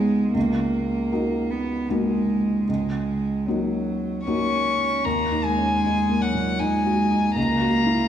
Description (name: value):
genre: neoclassical piano and strings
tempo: 77 BPM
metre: 3/4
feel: rubato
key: unclear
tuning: A4 = 440 Hz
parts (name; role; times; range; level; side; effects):
- rich cello; second line; 0.0-8.1 s; F#3 to C#4; -23 LUFS; right 3 dB; none
- felt-muted upright piano; accompaniment; 0.0-8.1 s; C#2 to A#4; -25 LUFS; left 2 dB; none
- warm violin; melody; 4.3-8.1 s; F#5 to C#6; -24 LUFS; left 4 dB; none
room: wet recital hall reverb, RT60 1.6 s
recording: studio reverb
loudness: -20 LUFS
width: side -9 dB against mid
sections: 0.0-5.1 A section; 5.1-8.1 B section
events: none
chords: 0.4 D#m7/C#; 5.1 D#m; 7.4 F#/C#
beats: | 0.35 1.12 1.90 | 2.68 3.47 4.27 | 5.05 5.83 6.60 | 7.37